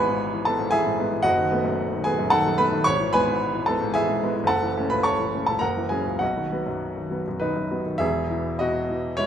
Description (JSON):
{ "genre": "classical, romantic character piece for solo piano", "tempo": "99-114 BPM", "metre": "3/4", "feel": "rubato", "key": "E major", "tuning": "A4 = 441 Hz", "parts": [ { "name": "warm baby grand piano", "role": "solo", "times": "0.0-9.3 s", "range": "E1 to C#6", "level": "-21 LUFS", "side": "equal", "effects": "none" } ], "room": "moderate recital hall reverb, RT60 1.3 s", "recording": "minimal, uncompressed stereo recording", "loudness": "-21 LUFS", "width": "side -9 dB against mid", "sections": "0.0-8.0 A section; 8.0-9.3 B section", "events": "none", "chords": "0.0 E/G#; 1.3 B7/F#; 2.9 E/G#; 4.5 F#m7; 5.6 F#7; 6.2 B; 8.0 E" }